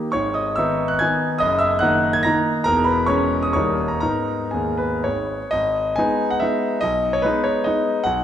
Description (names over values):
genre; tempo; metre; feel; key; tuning
classical, romantic triple-time dance for piano with dotted rhythms; 112-154 BPM; 3/4; rubato; G# minor; A4 = 440 Hz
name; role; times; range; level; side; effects
bright concert grand piano; solo; 0.0-8.2 s; D#1 to A#6; -18 LUFS; equal; none
room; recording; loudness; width
moderate concert hall reverb, RT60 2.1 s; dark, warm production; -18 LUFS; side -10 dB against mid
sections
0.0-5.5 A section; 5.5-8.2 B section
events
none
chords
0.1 G#m; 1.4 D#m/F#; 2.7 C#m/E; 3.5 D#7; 4.0 G#m; 6.8 G#m/B